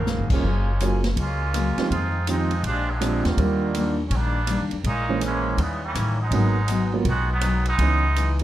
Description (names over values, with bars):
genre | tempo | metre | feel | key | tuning
jazz, big band swing | 163 BPM | 4/4 | swing 65% on 8ths | Eb minor | A4 = 441 Hz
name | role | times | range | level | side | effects
muted trombone section | second line | 0.0-8.4 s | C3 to Gb4 | -27 LUFS | right 2 dB | none
upright bass | bass | 0.0-8.4 s | F1 to F2 | -24 LUFS | equal | none
picked steel-string acoustic guitar | accompaniment | 0.1-8.4 s | F2 to Ab4 | -30 LUFS | left 4 dB | none
swinging big-band drum kit | drums | 0.1-8.4 s | crash cymbal, hi-hat, kick drum, ride cymbal, rim click, snare drum | -30 LUFS | equal | none
warm grand piano | accompaniment | 0.3-8.0 s | Gb2 to C5 | -27 LUFS | right 4 dB | none
room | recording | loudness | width
light reverb | dark, warm production | -20 LUFS | side -13 dB against mid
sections
0.4-8.4 A section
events
trombone section solo 0.4-8.4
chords
0.4 Gbmaj9; 1.9 Fm7; 2.6 Bb13; 3.4 Ebmaj7; 4.9 Bbm7b5; 5.6 Eb7b9; 6.3 Abm7; 7.8 Dbm9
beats
0.07 | 0.43 0.80 1.17 1.54 | 1.91 2.27 2.64 3.01 | 3.38 3.75 4.12 4.48 | 4.85 5.22 5.59 5.96 | 6.33 6.69 7.06 7.43 | 7.80 8.16